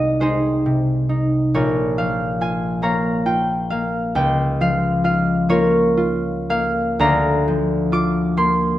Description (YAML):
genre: classical, solo harp piece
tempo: 37-47 BPM (dotted quarters)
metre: 6/8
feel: rubato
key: unclear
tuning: A4 = 440 Hz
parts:
  - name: concert harp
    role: solo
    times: 0.0-8.8 s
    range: Bb1 to D6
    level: -16 LUFS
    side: equal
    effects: none
room: moderate recital hall reverb, RT60 1.4 s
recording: none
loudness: -17 LUFS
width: side -13 dB against mid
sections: 0.0-8.8 A section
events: none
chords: 0.0 Ab/C; 1.5 Bbm; 4.2 Bbm/Db; 7.0 Bb/D